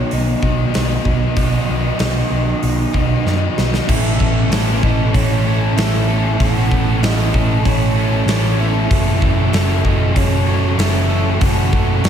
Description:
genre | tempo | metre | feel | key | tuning
rock, shoegaze and dream pop | 96 BPM | 4/4 | straight | A lydian | A4 = 440 Hz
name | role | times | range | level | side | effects
breathy flute-like synth lead | melody | 0.0-12.0 s | C#5 to F#5 | -27 LUFS | equal | chorus, analog delay
twelve-string electric guitar | arpeggios | 0.0-12.1 s | E3 to F#4 | -29 LUFS | right 9 dB | none
biting overdriven guitar | riff | 0.0-12.1 s | F#2 to A4 | -22 LUFS | left 9 dB | wide subtle chorus
crunchy overdriven guitar | riff | 0.0-12.1 s | B2 to A4 | -22 LUFS | right 9 dB | reverse reverb
hollow-body short-scale picked electric bass | bass | 0.1-12.1 s | F#1 to F#2 | -18 LUFS | left 1 dB | none
huge arena drum kit | drums | 0.1-12.1 s | crash cymbal, hi-hat, kick drum, snare drum | -20 LUFS | right 1 dB | none
room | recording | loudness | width
light reverb, small room ambience | none | -14 LUFS | side -8 dB against mid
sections
0.0-3.9 A section; 3.9-12.1 B section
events
drum fill 3.3-3.9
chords
0.0 B; 3.9 A69; 8.9 F#m7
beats
0.11 0.74 | 1.37 2.00 2.63 3.26 | 3.89 4.52 5.15 5.78 | 6.40 7.03 7.66 8.29 | 8.91 9.54 10.16 10.79 | 11.41 12.04

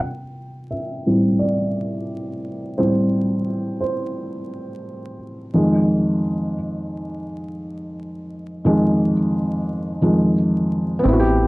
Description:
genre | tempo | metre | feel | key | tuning
hip hop | 87 BPM | 4/4 | swing 58% on 16ths | unclear | A4 = 440 Hz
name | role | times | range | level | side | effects
felt-muted upright piano | accompaniment | 0.0-11.5 s | F2 to E5 | -19 LUFS | equal | cassette tape, low-pass filter
deep dub fingered electric bass | bass | 11.1-11.5 s | A1 | -19 LUFS | equal | none
room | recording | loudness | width
moderate studio ambience, RT60 0.5 s | vinyl crackle, lossy compression artefacts | -18 LUFS | side -22 dB against mid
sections
0.0-11.1 A section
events
felt piano solo 0.0-11.1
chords
0.0 Am7; 5.5 Fm7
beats
| 0.01 0.70 1.40 2.08 | 2.77 3.46 4.15 4.84 | 5.53 6.22 6.91 7.60 | 8.29 8.98 9.67 10.36 | 11.05

